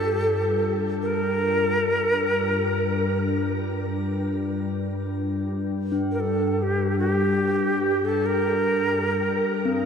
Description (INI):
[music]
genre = world meditative, free-time meditation music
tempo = free time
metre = none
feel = none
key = G minor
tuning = A4 = 439 Hz
[part]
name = bright Native American-style cedar flute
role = melody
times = 0.0-9.8 s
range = G4 to Bb4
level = -23 LUFS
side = right 1 dB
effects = shimmer reverb, diffuse ambient delay
[part]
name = organ-like drone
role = drone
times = 0.0-9.9 s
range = G2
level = -26 LUFS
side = left 2 dB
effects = ensemble chorus, built-in reverb
[part]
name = bronze singing bowl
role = texture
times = 0.0-9.9 s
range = C4 to F4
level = -32 LUFS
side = left 2 dB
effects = shimmer reverb
[sound]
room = wet huge ambient reverb, RT60 6.2 s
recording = dark, warm production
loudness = -21 LUFS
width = side -6 dB against mid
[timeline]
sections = 0.0-9.9 A section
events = none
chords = none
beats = free time